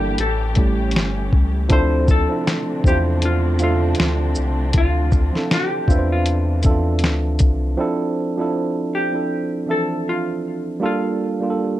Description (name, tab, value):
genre	lo-fi hip hop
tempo	79 BPM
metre	4/4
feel	swing 56% on 16ths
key	D minor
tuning	A4 = 440 Hz
part	vintage hollow-body jazz guitar	melody	0.0-11.8 s	F4 to C5	-25 LUFS	left 1 dB	low-pass filter, plate reverb
part	mellow tine electric piano	accompaniment	0.0-11.8 s	E3 to E5	-22 LUFS	right 2 dB	low-pass filter, plate reverb
part	dark studio string section	sustained chords	0.0-7.7 s	C3 to G4	-30 LUFS	left 2 dB	low-pass filter, plate reverb
part	warm sub bass	bass	0.0-7.8 s	G1 to E2	-20 LUFS	left 1 dB	none
part	lo-fi sampler-style drum kit	drums	0.2-7.6 s	hi-hat, kick drum, shaker, snare drum	-17 LUFS	left 1 dB	none
room	light reverb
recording	none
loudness	-17 LUFS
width	side -14 dB against mid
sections	0.0-7.8 A section; 7.8-11.8 B section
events	none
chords	0.2 A7; 1.7 Dm7; 10.8 Gm7